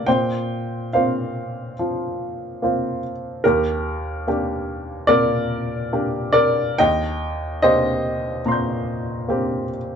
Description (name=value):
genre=neoclassical minimalist piano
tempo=72 BPM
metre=4/4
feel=rubato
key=unclear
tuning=A4 = 440 Hz
part: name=warm baby grand piano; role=solo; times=0.0-10.0 s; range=Eb2 to G6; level=-19 LUFS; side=equal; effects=none
room=moderate small room ambience, RT60 0.5 s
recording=band playing live in one room, nothing above 7.9 kHz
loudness=-19 LUFS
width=side -7 dB against mid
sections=0.0-10.0 A section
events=none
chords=0.1 Bbsus2; 3.4 Ebmaj7; 6.8 Cm7/Eb